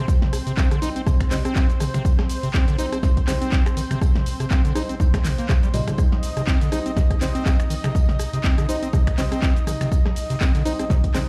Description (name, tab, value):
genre	acid house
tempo	122 BPM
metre	4/4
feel	swing 56% on 16ths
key	C minor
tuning	A4 = 440 Hz
part	lush unison pad	sustained chords	0.0-11.3 s	C4 to Eb5	-35 LUFS	equal	chorus, sidechain pumping
part	acid bass, square	riff	0.0-11.2 s	Bb2 to Eb4	-29 LUFS	equal	overdrive, sidechain pumping, dub echo
part	electronic kick drum	drums	0.1-11.1 s	none	-22 LUFS	equal	none
part	open jazz drum kit	drums	0.1-11.3 s	hi-hat, snare drum, tambourine	-48 LUFS	equal	none
part	punchy analog drum machine	drums	0.1-11.3 s	finger snaps, handclaps, hi-hat, rim click, shaker, snare drum, toms	-31 LUFS	equal	none
part	deep mellow chord stab	stabs	0.8-11.3 s	G3 to C5	-34 LUFS	equal	chorus, dub echo
room	light reverb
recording	played on a big sound system in a bare room, large studio reverb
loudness	-21 LUFS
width	mono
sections	0.0-11.3 A section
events	none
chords	0.0 Cm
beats	| 0.08 0.57 1.06 1.56 | 2.05 2.54 3.03 3.52 | 4.01 4.51 5.00 5.49 | 5.98 6.47 6.97 7.46 | 7.95 8.44 8.93 9.43 | 9.92 10.41 10.90